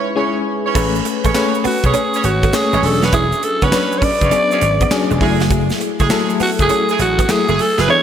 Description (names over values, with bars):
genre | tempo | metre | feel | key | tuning
R&B, new jack swing | 101 BPM | 4/4 | swing 66% on 16ths | F# minor | A4 = 442 Hz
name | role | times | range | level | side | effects
FM electric piano with tremolo | accompaniment | 0.0-8.0 s | E3 to C#5 | -19 LUFS | left 5 dB | none
clear horn section | stabs | 0.0-7.9 s | G#3 to C#5 | -23 LUFS | right 5 dB | none
direct-recorded clean electric guitar | riff | 0.8-8.0 s | F#3 to E4 | -25 LUFS | right 5 dB | ensemble chorus
vintage slap bass | bass | 0.8-7.9 s | E1 to B1 | -20 LUFS | equal | none
modern studio drum kit | drums | 0.8-7.9 s | crash cymbal, handclaps, hi-hat, kick drum, snare drum | -20 LUFS | right 1 dB | gated reverb
tube shaker | percussion | 0.8-7.9 s | none | -36 LUFS | right 8 dB | none
breathy alto saxophone | melody | 1.7-8.0 s | F#4 to D5 | -17 LUFS | right 1 dB | none
room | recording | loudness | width
moderate lush hall reverb, RT60 2.5 s | bright 1980s-style digital production | -13 LUFS | side -9 dB against mid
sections
0.8-8.0 A section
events
break 0.0-0.8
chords
0.0 C#m7; 0.8 Amaj9; 2.8 E13; 5.2 F#m9